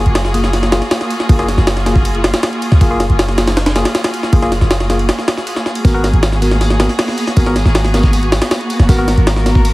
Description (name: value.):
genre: drum and bass, jungle.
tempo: 158 BPM.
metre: 4/4.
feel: straight.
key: unclear.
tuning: A4 = 439 Hz.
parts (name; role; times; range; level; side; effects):
dark chamber string section; sustained chords; 0.0-9.7 s; A#3 to A#4; -20 LUFS; equal; vintage 12-bit sampler grit.
warm 808-style bass; bass; 0.0-9.7 s; F#1 to C#2; -14 LUFS; equal; tube saturation.
jungle sampler-style drum kit; drums; 0.1-9.7 s; kick drum, ride cymbal, snare drum; -15 LUFS; equal; none.
tine electric piano; stabs; 0.3-9.6 s; A#3 to A#4; -20 LUFS; left 1 dB; dub echo.
crunchy breakbeat drum kit; drums; 5.9-9.7 s; hi-hat, snare drum, tambourine; -30 LUFS; left 2 dB; high-pass filter on hats, high-pass filter on snare, high-pass filter on perc, high-pass filter on room.
room: light reverb, small room ambience.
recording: heavily compressed radio sound, multiband compression, vinyl crackle.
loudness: -11 LUFS.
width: side -20 dB against mid.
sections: 0.0-9.7 A section.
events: break 5.1-5.8.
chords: 0.0 F#maj9; 5.8 G#m9.